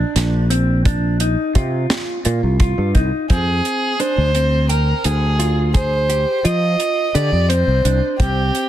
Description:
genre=progressive instrumental, band music in an uneven meter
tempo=172 BPM (eighths)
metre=7/8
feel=straight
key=F dorian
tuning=A4 = 441 Hz
part: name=mellow electric guitar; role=arpeggios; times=0.0-8.7 s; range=C4 to G5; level=-23 LUFS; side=equal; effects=none
part: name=sustaining fretless electric bass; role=bass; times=0.0-8.5 s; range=Bb1 to F3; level=-17 LUFS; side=equal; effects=analog chorus
part: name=deep reggae drum kit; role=drums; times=0.2-8.7 s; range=hi-hat, kick drum, snare drum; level=-18 LUFS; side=equal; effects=none
part: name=dark violin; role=melody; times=3.3-8.7 s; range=G4 to Eb5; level=-19 LUFS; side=right 1 dB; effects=ping-pong delay
room=light reverb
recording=dense, heavily limited modern master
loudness=-15 LUFS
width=side -12 dB against mid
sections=0.0-3.3 A section; 3.3-8.7 B section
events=none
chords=0.0 Cm; 3.3 Fmadd9

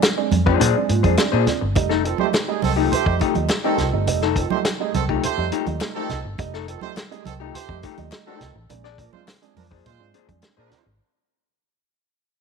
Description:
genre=funk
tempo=104 BPM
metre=4/4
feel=straight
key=F mixolydian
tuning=A4 = 440 Hz
part: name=vintage hollow-body jazz guitar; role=accompaniment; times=0.0-10.9 s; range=A3 to D5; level=-24 LUFS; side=left 16 dB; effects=none
part: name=warm soul drum kit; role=drums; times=0.0-10.9 s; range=hi-hat, kick drum, snare drum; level=-23 LUFS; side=equal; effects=none
part: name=group handclap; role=percussion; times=0.0-10.6 s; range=none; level=-34 LUFS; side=left 12 dB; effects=none
part: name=dark upright piano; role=stabs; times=0.2-10.8 s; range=Bb2 to Eb4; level=-27 LUFS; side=right 13 dB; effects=none
part: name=vintage muted fingered electric bass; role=bass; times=0.3-11.0 s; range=F1 to Bb2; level=-23 LUFS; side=equal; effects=none
part: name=congas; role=percussion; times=0.3-10.9 s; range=none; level=-29 LUFS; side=right 8 dB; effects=none
part: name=warm horn section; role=second line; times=2.0-10.8 s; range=Eb3 to C5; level=-27 LUFS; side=right 12 dB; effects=none
room=light reverb, studio reverb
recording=1960s-style stereo with parts hard left and right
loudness=-18 LUFS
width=side -5 dB against mid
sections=0.0-11.0 A section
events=fade-out 0.0-11.0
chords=0.0 Bb9; 1.8 F9; 8.7 Bb9

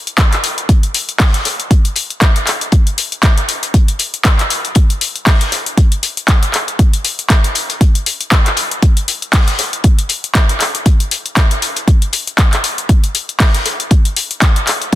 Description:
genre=house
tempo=118 BPM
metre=4/4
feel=swing 56% on 16ths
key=none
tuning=none
part: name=punchy analog drum machine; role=drums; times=0.1-15.0 s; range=handclaps, hi-hat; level=-16 LUFS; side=left 2 dB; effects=overdrive
part: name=electronic kick drum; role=drums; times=0.2-15.0 s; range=none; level=-10 LUFS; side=equal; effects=overdrive
part: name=warm soul drum kit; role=drums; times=0.2-15.0 s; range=hi-hat, snare drum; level=-24 LUFS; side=left 4 dB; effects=high-pass filter on hats, high-pass filter on snare, high-pass filter on room
room=light reverb, studio ambience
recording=dense, heavily limited modern master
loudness=-11 LUFS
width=side -14 dB against mid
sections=0.0-15.0 A section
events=none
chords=none

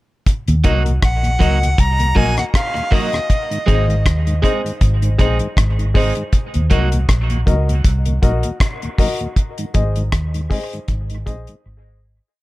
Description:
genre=dub reggae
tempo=79 BPM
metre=4/4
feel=swing 56% on 16ths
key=Eb dorian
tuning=A4 = 439 Hz
part: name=deep reggae drum kit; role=drums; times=0.3-11.6 s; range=hi-hat, kick drum, rim click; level=-17 LUFS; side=equal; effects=none
part: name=mellow tonewheel organ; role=accompaniment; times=0.5-11.6 s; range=Eb2 to Eb4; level=-26 LUFS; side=left 1 dB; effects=chorus vibrato, slow rotary speaker
part: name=vintage muted fingered electric bass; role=bass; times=0.5-12.2 s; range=Ab1 to Eb2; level=-17 LUFS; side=equal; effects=none
part: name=electric guitar at the edge of break-up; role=accompaniment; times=0.6-6.9 s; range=Gb3 to Ab4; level=-26 LUFS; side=right 5 dB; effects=vibrato effect, dub echo
part: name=dark concert grand piano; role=stabs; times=0.6-11.5 s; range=Gb4 to Eb5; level=-25 LUFS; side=left 3 dB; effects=dub echo
part: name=bright reedy tenor recorder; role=melody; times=1.0-4.1 s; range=Eb5 to Bb5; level=-23 LUFS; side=equal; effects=dub echo
room=small room ambience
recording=none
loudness=-14 LUFS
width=side -18 dB against mid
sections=0.3-12.4 A section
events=break 6.3-12.4; fade-out 9.4-12.4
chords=0.3 Ebm; 3.3 Ab; 6.3 Ebm; 9.4 Ab

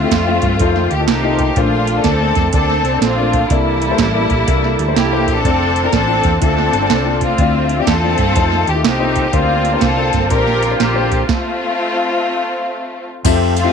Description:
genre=uptempo gospel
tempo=123 BPM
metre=4/4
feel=swing 65% on 8ths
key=F major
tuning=A4 = 440 Hz
part: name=clear studio string section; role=melody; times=0.0-13.7 s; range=G3 to Bb4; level=-17 LUFS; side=left 2 dB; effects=none
part: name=clear grand piano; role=accompaniment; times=0.0-13.7 s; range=Bb2 to F5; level=-20 LUFS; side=left 14 dB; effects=none
part: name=overdriven tonewheel organ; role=sustained chords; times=0.0-13.7 s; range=Db3 to E5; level=-25 LUFS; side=right 12 dB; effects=slow rotary speaker, chorus vibrato
part: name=warm French horn section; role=sustained chords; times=0.0-11.3 s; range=F3 to E5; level=-29 LUFS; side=right 11 dB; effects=none
part: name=hollow-body short-scale fingered electric bass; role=bass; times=0.0-13.7 s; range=F1 to G2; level=-19 LUFS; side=equal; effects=none
part: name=soft vintage rhythm box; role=drums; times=0.1-13.6 s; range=crash cymbal, hi-hat, kick drum, snare drum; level=-18 LUFS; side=right 4 dB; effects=overdrive
part: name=tambourine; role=percussion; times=13.3-13.6 s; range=none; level=-28 LUFS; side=left 18 dB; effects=none
room=light reverb, small room ambience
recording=1960s-style stereo with parts hard left and right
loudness=-13 LUFS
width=side -6 dB against mid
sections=0.0-13.2 A section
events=stop 11.3-13.2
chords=0.0 Dm9; 0.6 F7; 1.6 Bbmaj9; 3.5 C13; 5.4 F6; 7.4 Dm9; 8.4 F7; 9.3 Bb69; 11.3 F

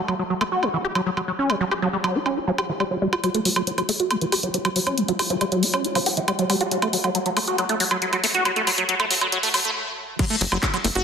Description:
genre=psychedelic trance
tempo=138 BPM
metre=4/4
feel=straight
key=F# phrygian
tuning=A4 = 440 Hz
part: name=liquid acid bass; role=riff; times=0.1-11.0 s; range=E3 to G4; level=-22 LUFS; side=equal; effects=chorus, auto-pan, sidechain pumping, tape echo
part: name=garage drum kit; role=drums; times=0.1-11.0 s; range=crash cymbal, handclaps, hi-hat, woodblock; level=-24 LUFS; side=right 1 dB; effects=small room ambience
part: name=electronic kick drum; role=drums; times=10.2-10.7 s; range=none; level=-23 LUFS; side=equal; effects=small room ambience
part: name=tight sequencer bass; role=bass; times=10.4-11.0 s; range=F#1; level=-25 LUFS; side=equal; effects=none
room=wet lush hall reverb, RT60 1.8 s, digital ambience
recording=dense, heavily limited modern master, high-pass filter, faint mains hum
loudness=-20 LUFS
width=side -6 dB against mid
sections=0.0-3.2 A section; 3.2-10.2 B section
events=filter sweep on acid bass 0.0-3.2, 3.2-10.2; build-up 3.2-10.2; filter sweep 3.2-10.2; stop 9.8-10.2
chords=0.0 F#5

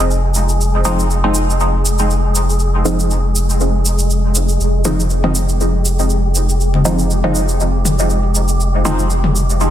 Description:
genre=dub techno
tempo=120 BPM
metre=4/4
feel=swing 55% on 16ths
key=F minor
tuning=A4 = 440 Hz
part: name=pure sine sub bass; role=bass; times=0.0-9.7 s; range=F1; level=-16 LUFS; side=equal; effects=none
part: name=wind-like tuned noise texture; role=texture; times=0.0-9.7 s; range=Ab3 to Ab4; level=-22 LUFS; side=left 1 dB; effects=built-in reverb
part: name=cabasa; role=percussion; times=0.1-9.7 s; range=none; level=-23 LUFS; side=right 2 dB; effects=none
part: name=filtered dub chord stab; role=stabs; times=0.9-9.0 s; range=F3 to Eb4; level=-20 LUFS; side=equal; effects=chorus, phaser, dub echo
part: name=electronic toms and congas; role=percussion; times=4.9-9.3 s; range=none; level=-22 LUFS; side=left 3 dB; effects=dub echo
room=light reverb, digital ambience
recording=dense, heavily limited modern master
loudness=-13 LUFS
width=side -11 dB against mid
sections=0.0-9.7 A section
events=none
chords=0.0 Fm7

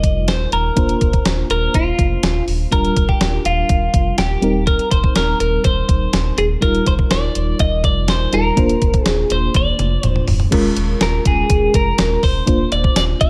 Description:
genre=1980s-style pop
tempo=123 BPM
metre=4/4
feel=straight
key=unclear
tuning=A4 = 439 Hz
part: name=twelve-string electric guitar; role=melody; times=0.0-13.3 s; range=F4 to F5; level=-22 LUFS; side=equal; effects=delay
part: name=FM electric piano with tremolo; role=accompaniment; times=0.0-13.3 s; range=G3 to C5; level=-25 LUFS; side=equal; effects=none
part: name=sub bass with octave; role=bass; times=0.0-13.3 s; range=Eb1 to F1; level=-22 LUFS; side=equal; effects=none
part: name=clean 12-bit digital drum machine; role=drums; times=0.0-13.3 s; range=crash cymbal, hi-hat, kick drum, snare drum, tambourine, toms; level=-20 LUFS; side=equal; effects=gated reverb
room=little or no reverb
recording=none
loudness=-16 LUFS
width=mono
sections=0.0-10.5 A section; 10.5-13.3 B section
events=drum fill 9.5-10.5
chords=0.0 Ebadd9; 0.8 Bbadd9/Eb; 2.7 Gm7/Eb; 4.4 Cm7/Eb; 6.6 Ebadd9; 8.6 Bbadd9/Eb; 10.5 Db6/Eb; 12.5 Bbadd9/Eb

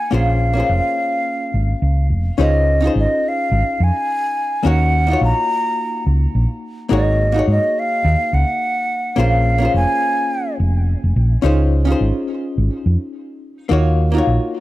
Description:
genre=sunset chillout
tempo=106 BPM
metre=4/4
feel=swing 57% on 16ths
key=Db major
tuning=A4 = 439 Hz
part: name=mellow hollow jazz flute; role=melody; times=0.0-10.6 s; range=Eb5 to Bb5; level=-20 LUFS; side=equal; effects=tape echo
part: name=archtop guitar, miked and amplified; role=accompaniment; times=0.0-14.6 s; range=Bb3 to Db5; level=-22 LUFS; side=left 1 dB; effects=auto-pan
part: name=hollow-body short-scale fingered electric bass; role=bass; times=0.1-14.4 s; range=F1 to Ab2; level=-15 LUFS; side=equal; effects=tube saturation
room=little or no reverb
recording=dry, gritty hardware recording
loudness=-15 LUFS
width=side -16 dB against mid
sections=0.0-2.4 A section; 2.4-14.6 B section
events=none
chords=0.1 Bbm7; 2.4 Dbmaj9; 4.6 Ebm7; 6.9 Ab7sus4; 9.2 Bbm7; 11.4 Dbmaj9; 13.7 Ebm7

